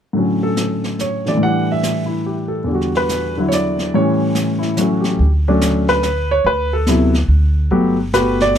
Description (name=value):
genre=jazz piano trio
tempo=143 BPM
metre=3/4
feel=swing 65% on 8ths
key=D major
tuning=A4 = 440 Hz
part: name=clear grand piano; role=melody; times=0.1-8.6 s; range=E2 to F#5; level=-15 LUFS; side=equal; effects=none
part: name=jazz brush drum kit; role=drums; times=0.1-8.6 s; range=brushed snare drum, hi-hat, snare drum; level=-26 LUFS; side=equal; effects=none
part: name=upright bass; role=bass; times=5.2-8.6 s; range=G1 to D2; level=-17 LUFS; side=equal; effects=none
room=little or no reverb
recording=none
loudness=-14 LUFS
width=side -9 dB against mid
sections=0.2-5.2 A section; 5.2-8.6 B section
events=none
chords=0.2 Dmaj7/A; 1.4 A7sus4; 2.7 Em9; 3.9 A7; 5.2 Dmaj7; 7.7 Gmaj9